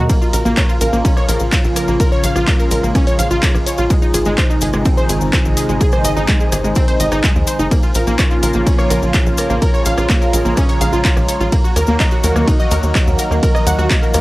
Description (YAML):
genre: melodic techno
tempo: 126 BPM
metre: 4/4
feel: straight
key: Bb minor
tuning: A4 = 439 Hz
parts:
  - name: lush unison pad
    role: sustained chords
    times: 0.0-14.2 s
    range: C3 to Gb4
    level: -22 LUFS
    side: equal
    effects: chorus, phaser, sidechain pumping
  - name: tight sequencer bass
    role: bass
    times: 0.0-14.2 s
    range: Gb1 to Eb2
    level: -18 LUFS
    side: equal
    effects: sidechain pumping
  - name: warbly tape-like pad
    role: texture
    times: 0.0-14.2 s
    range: Gb3 to Bb5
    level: -23 LUFS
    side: equal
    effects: chorus, built-in reverb, sidechain pumping
  - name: wide unison pluck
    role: arpeggios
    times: 0.1-14.2 s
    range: Ab3 to Gb5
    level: -20 LUFS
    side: equal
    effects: sidechain pumping, tape echo
  - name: electronic kick drum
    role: drums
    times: 0.1-14.0 s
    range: none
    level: -15 LUFS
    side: equal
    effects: cassette tape
  - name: punchy analog drum machine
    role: drums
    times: 0.1-14.2 s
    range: handclaps, hi-hat, ride cymbal, rim click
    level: -23 LUFS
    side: equal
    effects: overdrive, cassette tape
  - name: cabasa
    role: percussion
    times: 0.1-14.2 s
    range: none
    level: -28 LUFS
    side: left 6 dB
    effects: none
room: light reverb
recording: home recording on cassette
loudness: -12 LUFS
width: side -19 dB against mid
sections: 0.0-14.2 A section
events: none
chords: 0.1 Bbm; 3.9 Ab; 7.7 Bbm; 11.5 Ebm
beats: | 0.10 0.57 1.05 1.52 | 2.00 2.48 2.95 3.43 | 3.90 4.38 4.86 5.33 | 5.81 6.29 6.76 7.24 | 7.71 8.19 8.67 9.14 | 9.62 10.10 10.57 11.05 | 11.52 12.00 12.48 12.95 | 13.43 13.90